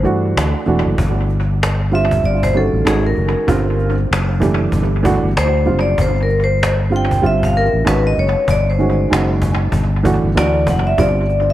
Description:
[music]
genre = hip hop, jazz-hop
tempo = 96 BPM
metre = 4/4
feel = swing 59% on 16ths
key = unclear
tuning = A4 = 440 Hz
[part]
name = vibraphone with medium hard mallets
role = melody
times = 0.0-11.5 s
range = Ab4 to G5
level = -19 LUFS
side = left 1 dB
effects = tape echo
[part]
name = dark upright piano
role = accompaniment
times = 0.0-11.2 s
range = D3 to G4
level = -19 LUFS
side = right 3 dB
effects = tape echo
[part]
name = sustaining fretless electric bass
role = bass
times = 0.0-11.5 s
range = E1 to G2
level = -17 LUFS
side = equal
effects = lush chorus
[part]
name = cajon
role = drums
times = 0.1-11.4 s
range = none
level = -22 LUFS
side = equal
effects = tape echo
[sound]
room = light reverb, studio ambience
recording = echo-heavy mix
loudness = -13 LUFS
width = side -14 dB against mid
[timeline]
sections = 1.0-11.5 A section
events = break 0.0-1.0; vibraphone solo 1.0-11.5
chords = 0.4 D; 1.0 G7sus4; 2.2 F13/G; 2.9 Ab9sus4; 3.5 Gm7; 4.1 Em11/F#; 4.7 Em11/G; 5.4 D7; 6.0 G7sus4; 7.2 Bb6/G; 7.9 Ab7sus4; 8.5 Gsus4; 9.1 F#sus2; 9.7 Em11/G; 10.4 D; 11.0 G7sus4

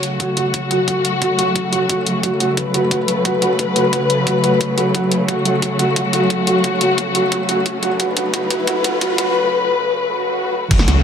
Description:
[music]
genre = dark technical drum and bass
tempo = 177 BPM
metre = 4/4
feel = straight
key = F# minor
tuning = A4 = 440 Hz
[part]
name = muted studio string section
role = sustained chords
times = 0.0-11.0 s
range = C#3 to B4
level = -17 LUFS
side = left 2 dB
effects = sidechain pumping
[part]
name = drum and bass drum kit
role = drums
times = 0.0-10.9 s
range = crash cymbal, hi-hat, snare drum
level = -21 LUFS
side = left 1 dB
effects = none
[part]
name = felt-muted upright piano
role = arpeggios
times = 0.2-9.2 s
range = F#4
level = -21 LUFS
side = right 2 dB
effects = sidechain pumping, low-pass filter, dub echo
[part]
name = electronic kick drum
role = drums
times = 0.2-10.8 s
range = none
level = -22 LUFS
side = equal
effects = overdrive, high-pass filter on kick, high-pass filter on room
[part]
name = riser, swell and impact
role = sound effects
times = 6.7-11.0 s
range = none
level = -25 LUFS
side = right 2 dB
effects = none
[part]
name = snarling distorted saw bass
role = bass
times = 10.7-11.0 s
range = F#1 to C#2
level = -15 LUFS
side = equal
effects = distortion, overdrive
[sound]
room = moderate digital room reverb, RT60 1.0 s, digital ambience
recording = high-pass filter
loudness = -15 LUFS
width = side -7 dB against mid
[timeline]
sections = 0.0-10.7 A section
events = build-up 0.0-10.7; drum fill 5.3-9.4; riser 6.7-9.4; swell 10.0-10.7; impact 10.7-11.0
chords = 0.0 F#m

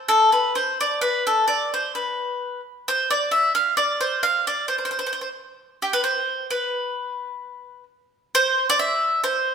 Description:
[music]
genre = italian folk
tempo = 131 BPM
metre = 3/4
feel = swing 53% on 8ths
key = unclear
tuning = A4 = 440 Hz
[part]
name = bowl-back mandolin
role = solo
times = 0.1-9.5 s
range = G4 to F5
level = -20 LUFS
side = equal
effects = none
[sound]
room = wet stone room reverb, RT60 1.5 s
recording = band playing live in one room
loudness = -20 LUFS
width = side -7 dB against mid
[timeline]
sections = 0.0-8.3 A section; 8.3-9.5 B section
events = none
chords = none

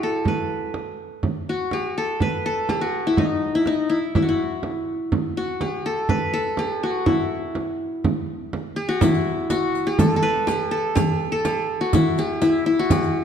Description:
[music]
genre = Arabic maqam ensemble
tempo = 123 BPM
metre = 4/4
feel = straight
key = E maqam suznak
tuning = A4 = 440 Hz
[part]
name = qanun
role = melody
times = 0.0-13.2 s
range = D#4 to B4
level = -22 LUFS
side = left 1 dB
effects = none
[part]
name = frame drum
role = percussion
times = 0.3-13.0 s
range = none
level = -24 LUFS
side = right 3 dB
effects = none
[part]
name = darbuka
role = percussion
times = 9.0-13.2 s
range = none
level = -28 LUFS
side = left 3 dB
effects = none
[part]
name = riq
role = percussion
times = 9.0-13.1 s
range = none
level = -34 LUFS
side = left 7 dB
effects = none
[sound]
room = moderate recital hall reverb, RT60 1.7 s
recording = dark, warm production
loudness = -20 LUFS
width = side -8 dB against mid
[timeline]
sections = 0.0-9.0 A section; 9.0-13.2 B section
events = none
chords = none

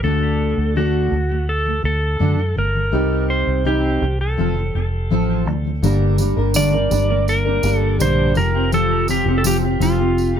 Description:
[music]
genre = acoustic pop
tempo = 83 BPM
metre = 4/4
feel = straight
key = G minor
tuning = A4 = 440 Hz
[part]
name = clean lap steel guitar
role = melody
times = 0.0-10.4 s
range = F4 to D5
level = -22 LUFS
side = right 1 dB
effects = digital delay
[part]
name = fingerpicked steel-string acoustic guitar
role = accompaniment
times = 0.0-10.4 s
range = G2 to Bb4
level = -20 LUFS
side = left 1 dB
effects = double-tracked left and right
[part]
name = vintage muted fingered electric bass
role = bass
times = 0.0-10.4 s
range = F1 to F#2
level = -20 LUFS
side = equal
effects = none
[part]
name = tambourine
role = percussion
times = 5.8-10.3 s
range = none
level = -28 LUFS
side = right 6 dB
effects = none
[sound]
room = light reverb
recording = none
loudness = -16 LUFS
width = side -8 dB against mid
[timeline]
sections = 0.0-5.8 A section; 5.8-10.4 B section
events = none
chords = 0.0 D; 2.9 Cm; 4.4 F; 5.8 Gm; 8.4 Fsus2

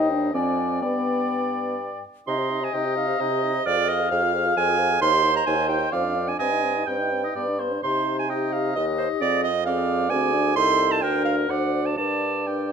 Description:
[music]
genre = quick classical-period movement for wind quintet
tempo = 120-135 BPM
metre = 3/4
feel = rubato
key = C minor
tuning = A4 = 444 Hz
[part]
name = mellow hollow concert flute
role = melody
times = 0.0-12.7 s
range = G4 to Ab5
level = -30 LUFS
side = left 10 dB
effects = none
[part]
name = warm oboe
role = second line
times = 0.0-12.7 s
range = Bb4 to G5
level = -28 LUFS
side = left 4 dB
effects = none
[part]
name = dark French horn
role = accompaniment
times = 0.0-12.7 s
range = B3 to Ab4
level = -29 LUFS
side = equal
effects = none
[part]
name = warm clarinet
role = accompaniment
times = 0.0-12.7 s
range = C5 to C6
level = -24 LUFS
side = right 6 dB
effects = none
[part]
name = mellow bassoon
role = bass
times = 0.0-12.7 s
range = C2 to C3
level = -28 LUFS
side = right 2 dB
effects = none
[sound]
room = moderate large studio reverb, RT60 1.3 s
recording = close, detailed microphones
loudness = -20 LUFS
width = side -7 dB against mid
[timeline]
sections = 0.0-2.3 A section; 2.3-12.7 B section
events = none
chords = 0.3 Dm7b5/F; 0.8 G; 2.3 Cm; 3.7 Fm; 5.0 Cm/Eb; 5.9 Fm6; 6.4 Cm/G; 7.4 G; 7.8 Cm; 9.2 Fm; 10.6 Adim/C; 11.0 Gm/D; 11.5 D7; 12.0 Gm

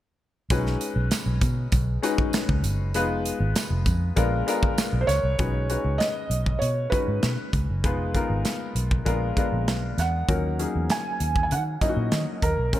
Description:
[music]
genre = polished 1980s jazz-funk pop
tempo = 98 BPM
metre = 4/4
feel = straight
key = B major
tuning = A4 = 439 Hz
[part]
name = clear concert grand piano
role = accompaniment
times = 0.5-12.8 s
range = F#3 to B4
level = -29 LUFS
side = left 4 dB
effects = wide subtle chorus
[part]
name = vintage muted fingered electric bass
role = bass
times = 0.5-12.8 s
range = F1 to D#3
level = -25 LUFS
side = equal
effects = none
[part]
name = modern studio drum kit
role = drums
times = 0.5-12.8 s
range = hi-hat, kick drum, snare drum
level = -26 LUFS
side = equal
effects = none
[part]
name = tambourine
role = percussion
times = 0.5-5.2 s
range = none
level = -40 LUFS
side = right 5 dB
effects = none
[part]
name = felt-muted upright piano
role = melody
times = 5.0-12.8 s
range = A#4 to G#5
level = -27 LUFS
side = right 3 dB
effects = none
[sound]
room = light reverb, studio reverb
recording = bright 1980s-style digital production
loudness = -22 LUFS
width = side -13 dB against mid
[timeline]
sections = 0.5-5.4 A section; 5.4-12.8 B section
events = none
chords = 0.5 B69; 2.9 Fm7b5; 4.2 A#7b9; 5.4 B69; 7.8 Fm7b5; 9.1 A#7b9; 10.3 D#m7

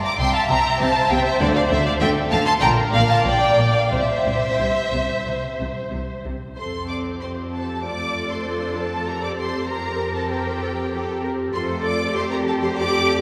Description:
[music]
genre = quick classical-period movement for string orchestra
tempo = 88-100 BPM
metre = 4/4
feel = rubato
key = F major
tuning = A4 = 438 Hz
[part]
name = warm symphonic violin section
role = melody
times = 0.0-13.2 s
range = D5 to D6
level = -26 LUFS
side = equal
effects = none
[part]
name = rich chamber violin section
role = second line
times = 0.0-13.2 s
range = G4 to Bb5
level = -28 LUFS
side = equal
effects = none
[part]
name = rich symphonic viola section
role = accompaniment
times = 0.0-13.2 s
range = A3 to E5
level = -30 LUFS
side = equal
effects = none
[part]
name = rich symphonic cello section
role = bass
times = 0.2-13.2 s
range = Bb2 to Bb4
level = -29 LUFS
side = equal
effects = none
[part]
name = rich symphonic double bass section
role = bass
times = 0.2-13.2 s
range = Bb1 to F2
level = -29 LUFS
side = equal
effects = none
[sound]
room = wet church reverb, RT60 3.5 s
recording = recorded in a church or concert hall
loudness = -21 LUFS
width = mono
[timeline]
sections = 0.0-6.6 A section; 6.6-13.2 B section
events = none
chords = 0.2 C; 1.4 D5; 2.6 Bb6; 3.9 C; 6.6 F; 9.1 C5/F; 11.5 F

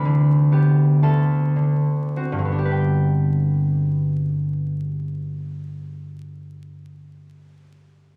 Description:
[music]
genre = classical, solo harp piece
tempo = 33-44 BPM (dotted quarters)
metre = 6/8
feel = rubato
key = G major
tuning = A4 = 440 Hz
[part]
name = concert harp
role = solo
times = 0.0-7.0 s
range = D2 to B5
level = -21 LUFS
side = equal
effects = none
[sound]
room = wet recital hall reverb, RT60 1.5 s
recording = vinyl crackle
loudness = -20 LUFS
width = mono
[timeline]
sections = 0.0-2.7 A section; 2.7-5.9 B section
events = slowing down 0.0-2.7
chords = 0.0 G/D; 1.0 D7; 2.7 G

